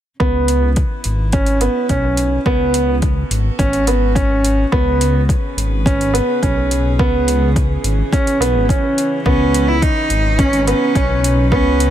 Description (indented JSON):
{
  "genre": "piano and strings electronica",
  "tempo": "106 BPM",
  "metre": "4/4",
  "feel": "straight",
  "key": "C# minor",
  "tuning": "A4 = 440 Hz",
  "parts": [
    { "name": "dark string quartet", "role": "sustained chords", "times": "0.2-11.9 s", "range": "C#3 to B4", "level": "-29 LUFS", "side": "equal", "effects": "sidechain pumping" },
    { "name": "clear concert grand piano", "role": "riff", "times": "0.2-11.9 s", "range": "B3 to C#4", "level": "-17 LUFS", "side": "right 1 dB", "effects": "tape echo" },
    { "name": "dark detuned saw bass", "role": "bass", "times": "0.2-11.9 s", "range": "G#1 to C#2", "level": "-18 LUFS", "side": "equal", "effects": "sidechain pumping" },
    { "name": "electronic kick drum", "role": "drums", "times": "0.2-11.6 s", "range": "none", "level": "-18 LUFS", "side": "equal", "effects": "overdrive" },
    { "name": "electronic hi-hat", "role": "drums", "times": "0.5-11.9 s", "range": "none", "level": "-24 LUFS", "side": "equal", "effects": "overdrive" },
    { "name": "rich cello", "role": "melody", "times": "9.3-11.9 s", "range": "C#4 to E4", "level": "-18 LUFS", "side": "right 1 dB", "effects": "none" }
  ],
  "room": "small room reverb",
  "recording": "none",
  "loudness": "-13 LUFS",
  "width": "side -11 dB against mid",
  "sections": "0.2-11.9 A section",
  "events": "fade-in on string quartet 0.2-11.9",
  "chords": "0.2 C#m7; 2.5 F#m; 4.7 G#m; 7.0 C#m7",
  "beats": "| 0.20 0.77 1.33 1.90 | 2.46 3.03 3.60 4.16 | 4.73 5.29 5.86 6.43 | 6.99 7.56 8.12 8.69 | 9.26 9.82 10.39 10.96 | 11.52"
}